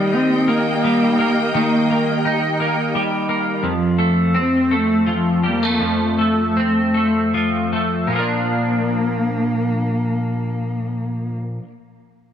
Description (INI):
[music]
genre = pop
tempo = 49-57 BPM (dotted quarters)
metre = 6/8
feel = straight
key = Bb major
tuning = A4 = 440 Hz
[part]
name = dark cello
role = melody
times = 0.0-11.4 s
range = F3 to C4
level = -19 LUFS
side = equal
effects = ping-pong delay
[part]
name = twelve-string electric guitar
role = accompaniment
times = 0.0-11.7 s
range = F2 to Eb4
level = -20 LUFS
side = equal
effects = double-tracked left and right
[part]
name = warm studio string section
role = sustained chords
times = 0.0-3.6 s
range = Bb3 to G5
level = -24 LUFS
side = equal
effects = none
[sound]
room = light reverb, small room ambience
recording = none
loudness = -16 LUFS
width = side -9 dB against mid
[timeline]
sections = 0.0-8.1 A section; 8.1-12.3 B section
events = slowing down 3.6-8.1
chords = 0.0 Eb; 3.6 F; 8.1 Bb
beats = 0.48 | 1.54 2.59 | 3.65 4.71 | 5.80 6.93 | 8.12 9.34 | 10.56